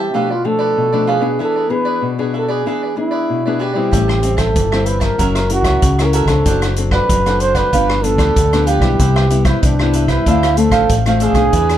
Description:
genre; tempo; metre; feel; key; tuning
samba and choro; 95 BPM; 4/4; straight; unclear; A4 = 441 Hz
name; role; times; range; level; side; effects
breathy trombone; second line; 0.0-11.8 s; D4 to C5; -17 LUFS; right 3 dB; none
cavaquinho; accompaniment; 0.0-11.8 s; D4 to A5; -22 LUFS; right 5 dB; none
nylon-string guitar; accompaniment; 0.0-11.8 s; G2 to A#4; -19 LUFS; left 6 dB; none
deep dub fingered electric bass; bass; 3.9-11.8 s; F#1 to E2; -17 LUFS; equal; none
swinging big-band drum kit; drums; 3.9-11.8 s; hi-hat, kick drum, rim click; -19 LUFS; equal; none
room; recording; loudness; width
light reverb; dark, warm production; -12 LUFS; side -11 dB against mid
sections
0.0-11.8 A section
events
trombone solo 0.0-11.8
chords
0.1 Bm7b5; 1.4 E7; 3.9 Am7; 5.2 F#7; 6.5 D7/F#; 7.7 G7; 9.0 Cmaj7; 10.3 Dm7

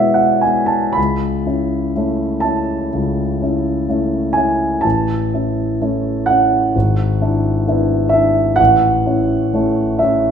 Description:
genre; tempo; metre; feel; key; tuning
classical, romantic nocturne for solo piano; 57-65 BPM; 4/4; rubato; A major; A4 = 440 Hz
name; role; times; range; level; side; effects
dark concert grand piano; solo; 0.0-10.3 s; G#1 to B5; -14 LUFS; equal; none
room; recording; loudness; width
moderate recital hall reverb, RT60 1.4 s; minimal, uncompressed stereo recording; -14 LUFS; side -7 dB against mid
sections
0.0-10.3 A section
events
none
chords
0.0 E; 1.0 A/C#; 4.8 A; 6.7 E7/G#; 8.6 A

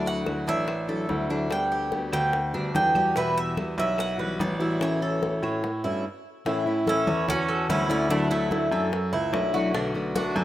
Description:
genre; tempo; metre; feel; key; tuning
latin, Cuban son and guajira; 146 BPM; 4/4; straight; D major; A4 = 439 Hz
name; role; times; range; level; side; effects
Cuban tres; melody; 0.0-10.4 s; A3 to G5; -28 LUFS; right 1 dB; none
fingerpicked plugged-in steel-string acoustic guitar; accompaniment; 0.0-10.4 s; B2 to F#4; -28 LUFS; left 2 dB; none
Cuban tres; arpeggios; 0.0-10.4 s; D4 to D5; -32 LUFS; right 3 dB; none
bright baby grand piano; bass; 0.0-10.4 s; A1 to A2; -29 LUFS; equal; none
congas; percussion; 0.1-10.4 s; none; -35 LUFS; equal; none
bongos; percussion; 0.3-10.4 s; none; -36 LUFS; left 5 dB; none
claves; percussion; 0.3-5.6 s; none; -43 LUFS; right 1 dB; none
clear trumpet; second line; 6.9-10.4 s; F#3 to D4; -32 LUFS; right 2 dB; none
room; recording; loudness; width
light reverb, small room reverb; rough home demo mix; -23 LUFS; side -14 dB against mid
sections
0.0-6.5 A section; 6.5-10.4 B section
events
stop 6.0-6.5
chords
0.0 Dadd9; 1.5 Gmaj7/D; 3.2 Emadd9; 4.8 A6; 6.5 A; 8.1 Dadd9; 9.7 Bm7

